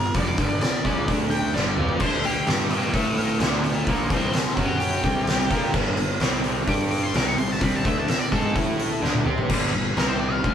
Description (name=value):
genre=blues rock power trio and southern rock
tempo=128 BPM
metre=4/4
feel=straight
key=unclear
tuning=A4 = 440 Hz
part: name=octave-fuzz lead guitar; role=melody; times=0.0-10.5 s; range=E4 to D6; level=-28 LUFS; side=left 1 dB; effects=wah, distortion
part: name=crunchy overdriven guitar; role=riff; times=0.0-10.5 s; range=F2 to C5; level=-26 LUFS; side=equal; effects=none
part: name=fuzz picked electric bass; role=bass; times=0.0-10.5 s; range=F1 to C3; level=-28 LUFS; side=equal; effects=overdrive
part: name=oversized low-tuned drum kit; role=drums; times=0.1-10.5 s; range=crash cymbal, hi-hat, kick drum, snare drum, toms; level=-24 LUFS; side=equal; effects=none
room=light reverb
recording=band playing live in one room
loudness=-20 LUFS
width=side -9 dB against mid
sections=0.0-9.5 A section; 9.5-10.5 A section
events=lead electric guitar solo 0.0-9.5, 9.5-10.5; drum fill 1.5-2.0, 9.0-9.5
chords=0.0 G5; 1.1 D5; 1.5 G5; 2.0 D5; 2.5 G5; 2.9 A5; 3.4 D5; 3.9 C7; 4.6 F#5; 5.0 C5; 5.7 G5; 6.2 C5; 6.7 G5; 7.1 C5; 7.6 D5; 8.6 A5; 9.0 D5; 9.5 G5; 10.0 C5